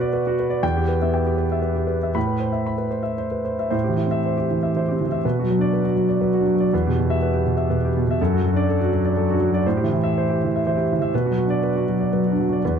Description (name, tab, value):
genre	neoclassical minimalist piano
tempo	121 BPM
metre	3/4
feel	rubato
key	A dorian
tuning	A4 = 440 Hz
part	warm concert grand piano	solo	0.0-12.8 s	E2 to B5	-19 LUFS	equal	none
room	moderate small room reverb, RT60 0.5 s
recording	dark, warm production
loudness	-19 LUFS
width	side -7 dB against mid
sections	0.0-3.7 A section; 3.7-12.8 B section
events	none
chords	0.0 Bm; 0.6 Em; 2.2 Amadd9; 3.7 Am7; 5.2 Bm; 6.7 Em; 8.2 D/F#; 9.7 Am7; 11.1 Bm